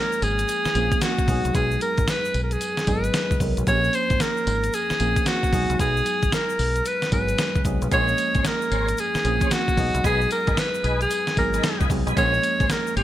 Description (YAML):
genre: R&B, new jack swing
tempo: 113 BPM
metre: 4/4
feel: swing 63% on 16ths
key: unclear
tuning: A4 = 439 Hz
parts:
  - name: edgy alto saxophone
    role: melody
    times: 0.0-13.0 s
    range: Gb4 to Db5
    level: -23 LUFS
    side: equal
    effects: ping-pong delay
  - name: tine electric piano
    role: accompaniment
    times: 0.0-13.0 s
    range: F3 to Bb4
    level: -28 LUFS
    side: right 2 dB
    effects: lush chorus
  - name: tube shaker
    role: percussion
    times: 0.1-13.0 s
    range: none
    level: -42 LUFS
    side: left 8 dB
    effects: none
  - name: deep dub fingered electric bass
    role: bass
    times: 0.2-13.0 s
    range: Ab1 to Db2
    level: -26 LUFS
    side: equal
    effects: none
  - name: clean 12-bit digital drum machine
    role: drums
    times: 0.2-13.0 s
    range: hi-hat, kick drum, snare drum, tambourine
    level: -25 LUFS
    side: equal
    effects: gated reverb
  - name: tonewheel organ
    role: stabs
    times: 7.9-13.0 s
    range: Db4 to C5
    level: -32 LUFS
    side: equal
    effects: chorus vibrato, slow rotary speaker
room: light reverb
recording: bright 1980s-style digital production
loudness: -20 LUFS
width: side -13 dB against mid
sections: 0.0-13.0 A section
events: none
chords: 0.0 Bbm9; 1.3 B6; 3.7 Bbm9; 5.5 B6; 7.9 Bbm9; 9.8 B6; 12.2 Bbm9